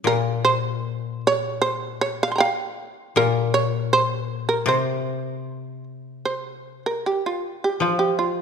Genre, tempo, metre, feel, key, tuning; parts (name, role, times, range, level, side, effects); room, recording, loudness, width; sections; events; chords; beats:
japanese traditional, Japanese chamber music; 77 BPM; 2/4; uneven beats, rubato; C in sen; A4 = 440 Hz
koto; accompaniment; 0.0-8.4 s; Bb2 to G3; -25 LUFS; left 6 dB
shamisen; melody; 0.1-8.4 s; F4 to C6; -21 LUFS; right 3 dB
moderate scoring stage reverb, RT60 1.8 s; minimal, uncompressed stereo recording; -21 LUFS; side -6 dB against mid
0.0-6.3 A section; 6.3-8.4 B section
| 0.05 0.85 | 1.64 2.41 | 3.16 3.92 | 4.68 5.47 | 6.28 7.07 | 7.84